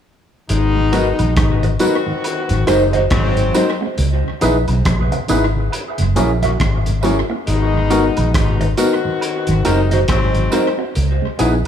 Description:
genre	lovers rock reggae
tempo	69 BPM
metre	4/4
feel	swing 60% on 16ths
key	unclear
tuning	A4 = 440 Hz
part	clear horn section	second line	0.5-10.7 s	G#2 to F#4	-21 LUFS	left 5 dB	none
part	vintage muted fingered electric bass	bass	0.5-11.6 s	F#1 to C#2	-17 LUFS	equal	none
part	crunchy breakbeat drum kit	drums	0.5-11.7 s	hi-hat, kick drum, rim click	-23 LUFS	equal	tape echo
part	mellow tonewheel organ	accompaniment	0.8-11.5 s	F#2 to F#4	-25 LUFS	right 5 dB	slow rotary speaker
part	barky tine electric piano	accompaniment	0.9-11.5 s	B3 to B#4	-22 LUFS	left 2 dB	overdrive
part	electric guitar through a small old amp	stabs	0.9-11.5 s	F#4 to E5	-21 LUFS	right 2 dB	phaser, tape echo
part	tambourine and woodblock	percussion	0.9-11.6 s	none	-32 LUFS	right 6 dB	none
room	light reverb, studio reverb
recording	small room ambience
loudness	-14 LUFS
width	side -9 dB against mid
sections	0.5-11.7 A section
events	none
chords	0.5 G#m7; 2.2 G#7; 4.0 C#m7; 5.7 F#7; 7.5 G#m7; 9.2 G#7; 11.0 C#m7

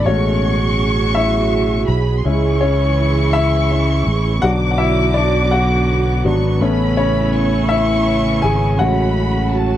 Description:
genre	pop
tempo	55 BPM (dotted quarters)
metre	6/8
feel	straight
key	F# minor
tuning	A4 = 440 Hz
part	warm symphonic violin section	second line	0.0-9.8 s	A5 to D6	-24 LUFS	equal	none
part	clear grand piano	accompaniment	0.0-9.8 s	F#3 to G#5	-19 LUFS	left 4 dB	none
part	dark studio string section	sustained chords	0.0-9.8 s	B2 to G#4	-21 LUFS	right 6 dB	none
part	fingered electric bass	bass	0.0-9.8 s	G#1 to C#2	-17 LUFS	equal	none
room	little or no reverb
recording	dry, close 1970s-style studio recording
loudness	-14 LUFS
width	side -12 dB against mid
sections	0.0-9.8 A section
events	grand piano solo 0.0-9.8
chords	0.1 F#madd9/A; 2.3 C#m; 4.4 Bm; 6.6 Aadd9; 8.8 F#madd9/A

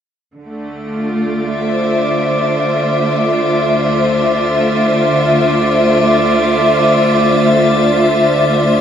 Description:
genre	ambient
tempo	free time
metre	none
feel	none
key	D minor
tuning	A4 = 440 Hz
part	clear studio string section	sustained chords	0.4-8.8 s	D3 to E5	-12 LUFS	left 1 dB	none
part	rich studio cello section	bass	0.4-8.8 s	D2	-30 LUFS	left 1 dB	none
part	analog drone	drone	2.1-8.8 s	D3 to A3	-23 LUFS	equal	chorus
part	drifting glass-harmonics texture	texture	0.9-8.8 s	D5 to D6	-19 LUFS	right 2 dB	chorus, built-in reverb
room	wet cathedral reverb, RT60 5.6 s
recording	dark, warm production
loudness	-11 LUFS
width	side -8 dB against mid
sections	0.4-8.8 A section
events	fade-in on cello section 0.4-8.8; fade-in on synth drone 0.4-8.8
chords	0.4 Dm7

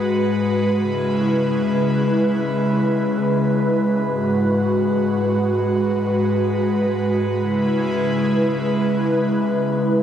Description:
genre	hip hop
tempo	free time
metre	none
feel	none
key	C# minor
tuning	A4 = 439 Hz
part	airy breathy pad	solo	0.0-10.0 s	G#2 to B4	-17 LUFS	equal	chorus, tape echo
room	moderate plate reverb, RT60 3.4 s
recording	dreamy mix soaked in reverb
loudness	-17 LUFS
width	side -9 dB against mid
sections	0.0-10.0 A section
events	none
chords	0.0 G#m7; 0.8 C#m7; 4.1 G#m7; 7.4 C#m7

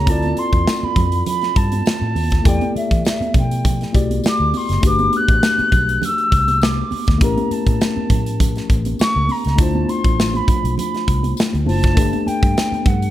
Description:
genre	lush 1970s-style soul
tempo	101 BPM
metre	4/4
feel	swing 54% on 16ths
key	G major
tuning	A4 = 445 Hz
part	mellow hollow silver concert flute	melody	0.0-13.1 s	E5 to F#6	-21 LUFS	equal	none
part	tine electric piano	accompaniment	0.0-13.1 s	A3 to D5	-24 LUFS	left 4 dB	overdrive
part	vintage muted fingered electric bass	bass	0.0-13.1 s	F#1 to E3	-20 LUFS	equal	none
part	modern studio drum kit	drums	0.1-13.1 s	hi-hat, kick drum, snare drum	-18 LUFS	equal	none
part	congas	percussion	0.2-13.0 s	none	-28 LUFS	right 5 dB	none
part	tambourine	percussion	0.7-12.7 s	none	-38 LUFS	left 7 dB	none
room	little or no reverb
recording	none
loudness	-15 LUFS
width	side -13 dB against mid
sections	0.0-13.1 A section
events	none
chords	0.1 Dm9; 2.5 Em11; 4.8 Gmaj9; 7.2 A7b9; 9.6 Dm9; 12.0 Gmaj9

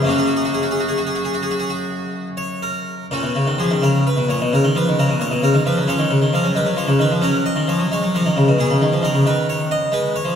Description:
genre	classical, baroque-style suite movement for harpsichord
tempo	77-92 BPM (dotted quarters)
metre	12/8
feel	rubato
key	F# major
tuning	A4 = 436 Hz
part	harpsichord	solo	0.0-10.4 s	F#2 to D#5	-16 LUFS	equal	none
room	wet church reverb, RT60 3.4 s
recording	none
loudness	-16 LUFS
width	side -8 dB against mid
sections	0.0-3.1 A section; 3.1-10.4 B section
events	none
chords	0.1 F#; 3.1 F#/A#; 5.9 C#; 7.2 G#m

